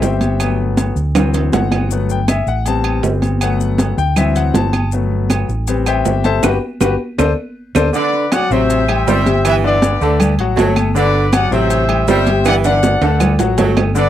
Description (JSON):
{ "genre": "latin, salsa", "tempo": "159 BPM", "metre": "4/4", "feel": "straight", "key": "G major", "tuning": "A4 = 439 Hz", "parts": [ { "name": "clear concert grand piano", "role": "accompaniment", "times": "0.0-14.1 s", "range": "C3 to C6", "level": "-18 LUFS", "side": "left 7 dB", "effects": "none" }, { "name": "fingered electric bass", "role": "bass", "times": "0.0-14.1 s", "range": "G1 to D2", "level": "-17 LUFS", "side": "right 1 dB", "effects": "none" }, { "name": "congas", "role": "percussion", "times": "0.0-14.1 s", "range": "none", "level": "-20 LUFS", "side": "equal", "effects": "none" }, { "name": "maracas", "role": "percussion", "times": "0.0-14.1 s", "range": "none", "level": "-30 LUFS", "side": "left 14 dB", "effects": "none" }, { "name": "timbales and agogo bells", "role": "percussion", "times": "0.0-14.0 s", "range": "none", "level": "-22 LUFS", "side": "right 7 dB", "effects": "none" }, { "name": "claves", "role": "percussion", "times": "0.4-14.0 s", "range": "none", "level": "-28 LUFS", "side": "right 10 dB", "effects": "none" }, { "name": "edgy saxophone section", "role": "second line", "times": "7.9-14.1 s", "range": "D3 to G3", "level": "-19 LUFS", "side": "right 6 dB", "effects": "none" }, { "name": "bright trumpet section", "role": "melody", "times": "8.0-14.1 s", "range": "B4 to F#5", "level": "-18 LUFS", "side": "equal", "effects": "none" } ], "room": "light reverb", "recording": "dry, close 1970s-style studio recording, faint mains hum", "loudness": "-13 LUFS", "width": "side -11 dB against mid", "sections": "0.0-7.9 A section; 7.9-14.1 B section", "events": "grand piano solo 0.0-7.9; drum fill 1.2-1.9, 7.2-7.9, 12.5-14.0; band accent 6.4-7.9", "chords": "0.4 Gmaj7; 1.2 D7; 1.9 Gmaj7; 2.7 Am7; 3.4 Gmaj7; 4.2 D7; 4.9 Gmaj7; 5.7 Am7; 6.4 Gmaj7; 7.2 D5; 7.9 D13; 8.7 Am7; 9.5 G; 10.2 D; 11.0 Gmaj7; 11.7 Am7; 12.5 G5; 13.2 D", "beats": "0.03 | 0.40 0.78 1.15 1.53 | 1.91 2.28 2.66 3.04 | 3.42 3.79 4.17 4.55 | 4.92 5.30 5.68 6.06 | 6.43 6.81 7.19 7.57 | 7.94 8.32 8.70 9.07 | 9.45 9.83 10.20 10.58 | 10.96 11.33 11.71 12.08 | 12.46 12.83 13.21 13.58 | 13.96" }